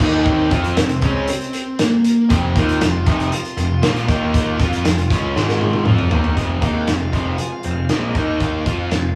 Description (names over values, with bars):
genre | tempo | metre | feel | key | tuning
quiet-loud alternative rock | 118 BPM | 4/4 | straight | F minor | A4 = 440 Hz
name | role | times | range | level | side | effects
fuzz lead guitar | melody | 0.0-9.2 s | Bb3 to Ab5 | -26 LUFS | equal | distortion
overdriven electric guitar | riff | 0.0-9.1 s | F2 to F4 | -24 LUFS | equal | none
fuzz picked electric bass | bass | 0.0-9.2 s | F1 to F2 | -24 LUFS | equal | overdrive
loose indie drum kit | drums | 0.0-9.0 s | crash cymbal, hi-hat, kick drum, snare drum, toms | -22 LUFS | equal | none
electric guitar through a small old amp | arpeggios | 6.4-9.2 s | F2 to F4 | -31 LUFS | equal | none
room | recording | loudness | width
moderate large studio reverb, RT60 1.4 s | band playing live in one room, small room ambience | -18 LUFS | mono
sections
0.0-6.4 A section; 6.4-9.2 B section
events
drum fill 5.4-6.4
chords
0.0 Eb5; 0.5 F5; 4.1 Eb5; 4.6 Fm; 5.4 Ab5; 5.9 F5; 6.4 Fm; 8.2 Eb5